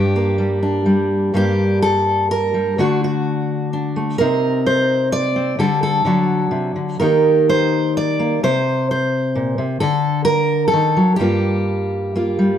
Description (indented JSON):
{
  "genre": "folk, solo fingerstyle acoustic guitar",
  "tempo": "128 BPM",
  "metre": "3/4",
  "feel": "rubato",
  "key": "G harmonic minor",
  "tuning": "A4 = 440 Hz",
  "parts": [
    { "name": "fingerpicked steel-string acoustic guitar", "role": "solo", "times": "0.0-12.6 s", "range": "G2 to D5", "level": "-15 LUFS", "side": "equal", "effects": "none" }
  ],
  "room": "light reverb",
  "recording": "band playing live in one room",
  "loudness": "-15 LUFS",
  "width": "side -9 dB against mid",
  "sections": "0.0-1.3 A section; 1.3-12.6 B section",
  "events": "none",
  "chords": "0.0 Gm; 2.8 D; 4.2 Cm; 5.6 Dsus4; 6.0 D; 7.0 Eb; 8.4 Bbsus2; 9.8 D; 11.2 Gm7",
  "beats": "0.38 0.86 | 1.35 1.83 2.31 | 2.79 3.26 3.73 | 4.20 4.66 5.12 | 5.59 6.04 6.51 | 7.00 7.48 7.96 | 8.43 8.90 9.36 | 9.81 10.27 10.74 | 11.20 11.67 12.15"
}